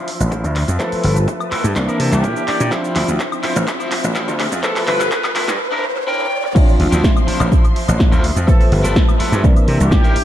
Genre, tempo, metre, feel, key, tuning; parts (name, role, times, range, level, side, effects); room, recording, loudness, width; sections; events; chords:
filtered disco house; 125 BPM; 4/4; straight; D minor; A4 = 443 Hz
mellow clav; accompaniment; 0.0-10.2 s; E3 to E5; -24 LUFS; equal; phaser, sidechain pumping, low-pass filter, analog delay
rich studio string section; sustained chords; 0.0-10.2 s; F3 to C6; -27 LUFS; equal; vintage 12-bit sampler grit, sidechain pumping, low-pass filter
electric guitar at the edge of break-up; riff; 0.0-10.2 s; D4 to A5; -25 LUFS; left 1 dB; sidechain pumping, low-pass filter, analog delay
riser; sound effects; 1.4-6.6 s; -26 LUFS; right 1 dB
punchy analog drum machine; drums; 0.1-10.2 s; cabasa, crash cymbal, handclaps, hi-hat, snare drum, woodblock; -23 LUFS; equal; sidechain pumping on hats, sidechain pumping on perc, sidechain pumping on cymbals, analog delay
slap bass; bass; 0.2-10.2 s; G1 to C3; -17 LUFS; equal; tube saturation, sidechain pumping, low-pass filter
electronic kick drum; drums; 0.3-10.0 s; -14 LUFS; equal; high-pass filter on kick
clear horn section; melody; 0.8-5.4, 8.5-10.2 s; G4 to B4; -25 LUFS; equal; sidechain pumping, low-pass filter, analog delay
light reverb, digital ambience; echo-heavy mix, high-pass filter; -14 LUFS; side -12 dB against mid
0.0-6.6 A section; 6.6-10.2 B section
build-up 0.0-6.6; drum fill 0.0-5.6; filter sweep 0.0-6.6; riser 1.4-6.6; clean electric guitar fill 1.8-2.7, 5.8-6.6; break 5.6-6.6; drop 6.6-10.2
0.0 Dm9; 0.8 G13; 1.8 C9; 2.7 Dm9; 4.6 G13; 5.6 Gm6/D; 6.6 Dm9; 8.5 G13; 9.4 C9